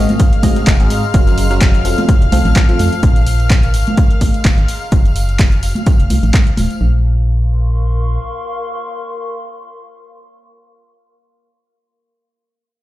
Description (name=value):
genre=piano house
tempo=127 BPM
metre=4/4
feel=swing 55% on 16ths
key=Bb minor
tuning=A4 = 440 Hz
part: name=warm chamber violin section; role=sustained chords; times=0.0-6.8 s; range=F5 to F6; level=-24 LUFS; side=left 1 dB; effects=sidechain pumping
part: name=barking FM electric piano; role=riff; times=0.0-2.9 s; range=Ab2 to F5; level=-19 LUFS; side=left 1 dB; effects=phaser, sidechain pumping, digital delay
part: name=organ-like FM bass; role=bass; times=0.0-8.2 s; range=Eb1 to F2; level=-14 LUFS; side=equal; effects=sidechain pumping
part: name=warbly tape-like pad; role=texture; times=0.0-10.8 s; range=F4 to Db6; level=-28 LUFS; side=left 1 dB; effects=chorus, built-in reverb, sidechain pumping
part: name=punchy analog drum machine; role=drums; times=0.1-6.8 s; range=handclaps, hi-hat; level=-23 LUFS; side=equal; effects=none
part: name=tambourine and congas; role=percussion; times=0.1-6.8 s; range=none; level=-22 LUFS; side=right 1 dB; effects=none
part: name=breakbeat sampler-style drum kit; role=drums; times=0.2-3.0 s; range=hi-hat, snare drum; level=-34 LUFS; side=equal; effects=none
part: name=electronic kick drum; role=drums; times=0.2-6.4 s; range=none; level=-12 LUFS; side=equal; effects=none
room=little or no reverb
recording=played on a big sound system in a bare room, large studio reverb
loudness=-11 LUFS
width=side -15 dB against mid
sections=0.0-6.8 A section; 6.8-10.6 B section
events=fade-out on ambient pad 0.0-6.8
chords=0.0 Ab7; 1.1 Gbmaj7; 1.8 F; 3.0 Bbm; 3.7 Ab; 4.9 Gbmaj7; 5.6 F; 6.8 Bbm